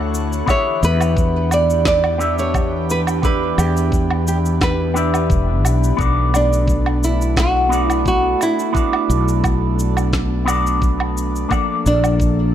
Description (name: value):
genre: sunset chillout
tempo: 87 BPM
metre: 4/4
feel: straight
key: unclear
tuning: A4 = 440 Hz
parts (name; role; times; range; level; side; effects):
- nylon-string guitar; melody; 0.0-12.5 s; D4 to D5; -20 LUFS; right 1 dB; digital delay
- electric guitar with an envelope filter; accompaniment; 0.0-12.5 s; F3 to E5; -22 LUFS; moving between left 7 dB and right 9 dB; auto-pan, digital delay
- airy breathy pad; sustained chords; 0.0-12.5 s; D3 to F#5; -26 LUFS; equal; chorus
- mellow fretless electric bass; bass; 0.0-12.5 s; E1 to E2; -19 LUFS; equal; none
- electronic cabasa, woodblock and snare drum; drums; 0.1-12.3 s; none; -25 LUFS; right 2 dB; studio ambience
- electronic kick drum; drums; 0.5-12.3 s; none; -20 LUFS; equal; studio ambience
room: light reverb, digital ambience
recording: none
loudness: -15 LUFS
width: side -10 dB against mid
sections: 0.0-12.5 A section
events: none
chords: 0.5 Em7; 6.0 Bm7; 11.5 Bbmaj7